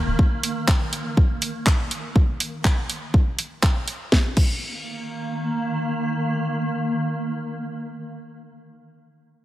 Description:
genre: melodic techno.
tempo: 122 BPM.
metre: 4/4.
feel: straight.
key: unclear.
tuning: A4 = 440 Hz.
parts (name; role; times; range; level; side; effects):
swarming drone; drone; 0.0-7.7 s; Eb3 to Bb3; -27 LUFS; equal; built-in reverb, sidechain pumping.
electronic kick drum; drums; 0.2-4.5 s; none; -18 LUFS; equal; none.
house drum kit; drums; 0.4-4.5 s; crash cymbal, handclaps, hi-hat, snare drum; -25 LUFS; equal; none.
room: light reverb.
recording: heavily compressed radio sound, multiband compression.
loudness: -21 LUFS.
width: side -14 dB against mid.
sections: 0.0-4.1 A section; 4.1-8.1 B section.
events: none.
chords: 0.0 Eb5.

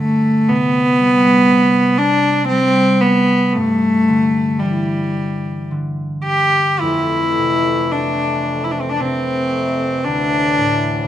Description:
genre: celtic folk, Celtic slow air.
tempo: 53-60 BPM.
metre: 3/4.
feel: rubato.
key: unclear.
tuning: A4 = 441 Hz.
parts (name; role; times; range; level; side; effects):
clear cello; melody; 0.0-11.1 s; G3 to G4; -15 LUFS; equal; none.
concert harp; accompaniment; 0.0-11.1 s; D2 to A3; -20 LUFS; equal; none.
hand-pumped harmonium; sustained chords; 6.8-11.1 s; D2 to A3; -25 LUFS; left 1 dB; none.
room: light reverb.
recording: minimal, uncompressed stereo recording.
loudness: -14 LUFS.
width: side -11 dB against mid.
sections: 0.0-11.1 A section.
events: none.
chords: 0.5 C5; 3.5 G5; 6.8 Fmaj7; 10.0 Dsus2.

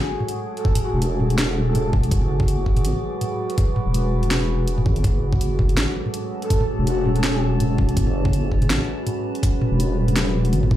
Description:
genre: half-time drum and bass.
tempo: 164 BPM.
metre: 4/4.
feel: swing 56% on 16ths, half-time.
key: F# minor.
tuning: A4 = 440 Hz.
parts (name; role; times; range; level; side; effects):
deep dark ambient pad; sustained chords; 0.0-10.8 s; F#4 to B4; -28 LUFS; equal; chorus, built-in reverb, vintage 12-bit sampler grit, sidechain pumping.
metallic inharmonic drone; texture; 0.3-10.8 s; F#3 to F#4; -30 LUFS; right 2 dB; chorus, built-in reverb.
drum and bass drum kit; drums; 0.2-10.8 s; hi-hat, snare drum, toms; -25 LUFS; equal; overdrive.
breathy flute-like synth lead; melody; 0.6-1.9, 6.4-7.4 s; F#4 to A4; -29 LUFS; right 1 dB; wide subtle chorus, digital delay.
electronic kick drum; drums; 0.7-10.8 s; none; -20 LUFS; equal; overdrive.
deep soft wobble bass; bass; 0.9-10.8 s; E1 to G#1; -21 LUFS; equal; chorus.
room: light reverb, digital ambience.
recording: played on a big sound system in a bare room, large studio reverb.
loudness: -18 LUFS.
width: side -13 dB against mid.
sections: 0.0-10.8 A section.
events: drum fill 10.2-10.8.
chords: 0.0 F#madd9.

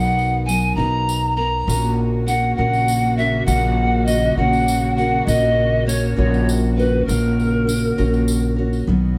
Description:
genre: acoustic folk duo or small band.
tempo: 67 BPM (dotted quarters).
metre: 6/8.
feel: straight.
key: unclear.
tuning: A4 = 441 Hz.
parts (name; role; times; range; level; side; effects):
bright reedy pan flute; melody; 0.0-8.5 s; A#4 to A#5; -23 LUFS; equal; slapback echo.
picked steel-string acoustic guitar; accompaniment; 0.0-9.2 s; B2 to A#4; -26 LUFS; equal; none.
upright bass; bass; 0.0-9.2 s; A#1 to B1; -22 LUFS; equal; none.
tambourine; percussion; 0.0-8.8 s; none; -36 LUFS; equal; none.
dark studio string section; sustained chords; 1.7-8.8 s; C#3 to F#4; -30 LUFS; equal; none.
room: light reverb.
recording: none.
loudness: -18 LUFS.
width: mono.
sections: 0.0-8.9 A section.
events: none.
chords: 0.0 Bmaj7; 1.7 F#/A#.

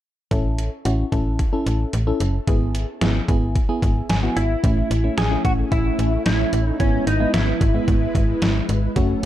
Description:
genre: synth-pop.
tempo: 111 BPM.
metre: 4/4.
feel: straight.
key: unclear.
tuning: A4 = 440 Hz.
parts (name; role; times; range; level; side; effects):
FM electric piano with auto-pan; accompaniment; 0.3-9.3 s; G#3 to G#5; -25 LUFS; equal; phaser, shimmer reverb.
slap-like FM bass; bass; 0.3-9.3 s; F#1 to A1; -21 LUFS; equal; none.
detuned 8-bit digital drum machine; drums; 0.3-9.3 s; hi-hat, kick drum, snare drum; -22 LUFS; equal; none.
direct-recorded clean electric guitar; melody; 4.4-8.7 s; C#4 to G#4; -24 LUFS; equal; analog chorus, tape echo, shimmer reverb.
string machine, violas; sustained chords; 4.6-9.3 s; F#3 to B4; -28 LUFS; equal; ensemble chorus, shimmer reverb.
room: light reverb.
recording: dark, warm production.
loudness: -18 LUFS.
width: side -12 dB against mid.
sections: 0.3-4.6 A section; 4.6-9.3 B section.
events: FM electric piano fill 3.8-4.6.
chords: 0.3 A; 2.5 E/G#; 4.6 A; 6.8 E/G#.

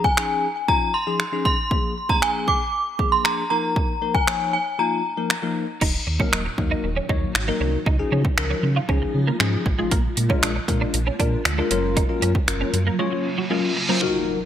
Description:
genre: dance-pop.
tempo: 117 BPM.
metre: 4/4.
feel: straight.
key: Eb dorian.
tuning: A4 = 438 Hz.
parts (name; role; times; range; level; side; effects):
synth chime; melody; 0.0-5.5 s; Ab5 to D6; -22 LUFS; equal; ensemble chorus, phaser, digital delay.
bell-like tine electric piano; accompaniment; 0.0-14.4 s; F3 to Db5; -26 LUFS; left 4 dB; phaser, sidechain pumping.
deep house drum kit; drums; 0.0-12.9 s; crash cymbal, finger snaps, hi-hat, kick drum; -23 LUFS; equal; none.
granular cloud pad; sustained chords; 6.5-14.5 s; Bb2 to Gb4; -30 LUFS; equal; built-in reverb, ensemble chorus, sidechain pumping.
twelve-string electric guitar; riff; 5.8-14.0 s; Gb3 to F4; -29 LUFS; right 5 dB; ensemble chorus.
sub bass with octave; bass; 5.8-12.9 s; Eb1 to Db3; -24 LUFS; equal; sidechain pumping.
reverse cymbal and impact; sound effects; 13.2-14.5 s; none; -26 LUFS; right 2 dB; none.
room: moderate plate reverb, RT60 1.8 s.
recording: bright 1980s-style digital production.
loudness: -19 LUFS.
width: side -10 dB against mid.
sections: 0.0-5.8 A section; 5.8-14.0 B section.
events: kick muted 4.8-5.8; reverse cymbal 13.2-14.0; impact 14.0-14.5.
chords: 0.0 Dbadd9; 1.7 Bb7; 3.5 Ebsus2; 5.8 Ebm; 7.9 Dbadd9; 9.9 Bb7; 11.7 Gbmaj7.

